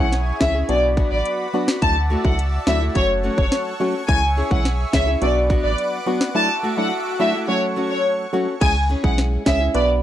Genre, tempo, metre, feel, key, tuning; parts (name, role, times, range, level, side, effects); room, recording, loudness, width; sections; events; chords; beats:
dancehall; 106 BPM; 4/4; straight; A4 = 440 Hz
warm studio violin section; melody; 0.0-9.8 s; C#5 to A5; -22 LUFS; equal; tape echo
percussive organ stab; accompaniment; 0.0-10.0 s; E3 to B4; -25 LUFS; equal; chorus, sidechain pumping
lush unison pad; sustained chords; 0.0-8.6 s; E4 to D6; -30 LUFS; right 1 dB; chorus, sidechain pumping
nylon-string guitar; arpeggios; 0.0-9.8 s; A3 to G#4; -27 LUFS; left 2 dB
warm sub bass; bass; 0.0-10.0 s; F#1 to D2; -22 LUFS; equal
island pop drum kit; drums; 0.1-9.9 s; crash cymbal, hi-hat, kick drum, snare drum; -20 LUFS; equal; overdrive, vintage 12-bit sampler grit
swell; sound effects; 5.7-7.5 s; -32 LUFS; left 3 dB
little or no reverb; dry, gritty hardware recording; -17 LUFS; side -12 dB against mid
0.0-8.6 A section; 8.6-10.0 B section
swell 5.7-8.6
0.0 C#m; 0.7 Bm; 1.8 Dadd9; 3.0 F#m; 4.1 C#m; 5.2 Bm; 6.3 Dadd9; 7.5 F#m; 8.6 C#m
0.12 0.69 1.25 | 1.82 2.39 2.95 3.52 | 4.09 4.65 5.22 5.78 | 6.35 6.92 7.48 8.05 | 8.61 9.18 9.75